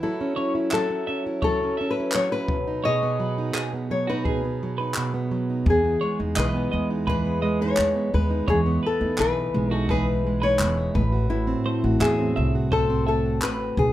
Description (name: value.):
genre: acoustic pop.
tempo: 85 BPM.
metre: 4/4.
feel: straight.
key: E major.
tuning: A4 = 440 Hz.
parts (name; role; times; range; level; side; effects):
nylon-string guitar; melody; 0.0-13.9 s; E4 to D#5; -25 LUFS; left 3 dB; none.
fingerpicked plugged-in steel-string acoustic guitar; accompaniment; 0.0-13.9 s; A2 to A4; -26 LUFS; right 2 dB; none.
twelve-string electric guitar; arpeggios; 0.4-13.2 s; F#4 to E5; -32 LUFS; right 2 dB; none.
jazz brush drum kit; drums; 0.7-13.9 s; handclaps, kick drum; -29 LUFS; equal; none.
upright bass; bass; 5.7-13.9 s; E1 to E2; -26 LUFS; equal; none.
room: moderate studio reverb, RT60 0.5 s.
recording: none.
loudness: -21 LUFS.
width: side -14 dB against mid.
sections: 0.0-13.9 A section.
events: none.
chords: 0.0 F#m7; 2.5 B6; 5.7 Emaj7; 11.0 Am6.